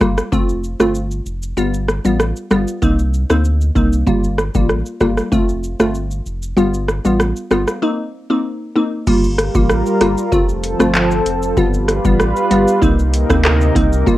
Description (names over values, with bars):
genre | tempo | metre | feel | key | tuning
dancehall | 96 BPM | 4/4 | straight | G minor | A4 = 440 Hz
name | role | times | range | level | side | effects
glassy wavetable pluck | accompaniment | 0.0-14.2 s | G3 to F4 | -17 LUFS | equal | chorus
warm sub bass | bass | 0.0-14.2 s | F1 to D2 | -19 LUFS | equal | none
booming analog drum machine | drums | 0.0-14.2 s | crash cymbal, handclaps, hi-hat, kick drum, rim click, shaker | -17 LUFS | equal | cassette tape
lush unison pad | sustained chords | 9.4-14.2 s | C3 to B4 | -18 LUFS | equal | chorus, sidechain pumping
room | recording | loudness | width
moderate small room reverb, RT60 0.6 s | home recording on cassette | -14 LUFS | side -15 dB against mid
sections
0.0-9.1 A section; 9.1-14.2 B section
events
break 7.8-9.1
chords
0.3 F; 1.6 G7; 2.8 Cm7; 4.1 Gm7; 5.3 F; 6.6 G7; 7.8 Cm7; 9.1 Gm7; 10.3 F; 11.6 G7; 12.8 Cm7